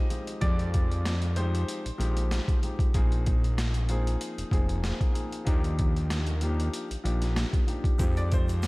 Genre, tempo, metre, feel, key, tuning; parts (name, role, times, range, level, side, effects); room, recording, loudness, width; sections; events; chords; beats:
hip hop, boom-bap hip-hop; 95 BPM; 4/4; swing 54% on 16ths; F dorian; A4 = 440 Hz
clear upright piano; melody; 0.0-2.3, 8.2-8.7 s; C5 to Eb5; -39 LUFS; equal; high-pass filter, low-pass filter, tape echo
dark concert grand piano; accompaniment; 0.0-8.7 s; F3 to Ab4; -35 LUFS; left 2 dB; cassette tape, high-pass filter, low-pass filter
boom bap sampler-style drum kit; drums; 0.1-8.7 s; hi-hat, kick drum, snare drum; -28 LUFS; equal; overdrive
fat analog bass; bass; 0.4-8.7 s; F1 to F2; -27 LUFS; equal
egg shaker; percussion; 8.0-8.7 s; -48 LUFS; right 5 dB
small room ambience; vinyl crackle; -25 LUFS; side -23 dB against mid
0.0-8.7 A section
0.0 Fm9; 2.9 Bb9sus4; 5.5 Ebmaj9; 8.0 Fm9
| 0.42 1.05 1.68 2.31 | 2.94 3.58 4.21 4.84 | 5.47 6.10 6.73 7.37 | 8.00 8.63